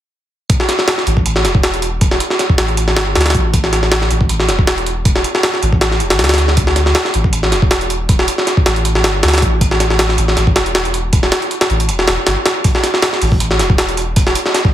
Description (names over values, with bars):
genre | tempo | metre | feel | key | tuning
drum and bass, jungle | 158 BPM | 4/4 | swing 54% on 16ths | unclear | A4 = 438 Hz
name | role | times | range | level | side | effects
jungle sampler-style drum kit | drums | 0.5-14.7 s | hi-hat, kick drum, snare drum | -12 LUFS | equal | none
soft dub sub bass | bass | 1.1-14.3 s | E1 to D2 | -17 LUFS | equal | none
crunchy breakbeat drum kit | drums | 12.7-14.6 s | hi-hat, snare drum | -26 LUFS | equal | none
room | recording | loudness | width
little or no reverb | heavily compressed radio sound | -12 LUFS | side -12 dB against mid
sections
0.5-14.7 A section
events
none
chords
none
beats
| 0.50 0.88 1.26 1.64 | 2.02 2.40 2.78 3.16 | 3.54 3.92 4.30 4.68 | 5.06 5.44 5.82 6.20 | 6.58 6.96 7.33 7.71 | 8.09 8.47 8.85 9.23 | 9.61 9.99 10.37 10.75 | 11.13 11.51 11.89 12.27 | 12.65 13.03 13.41 13.79 | 14.17 14.55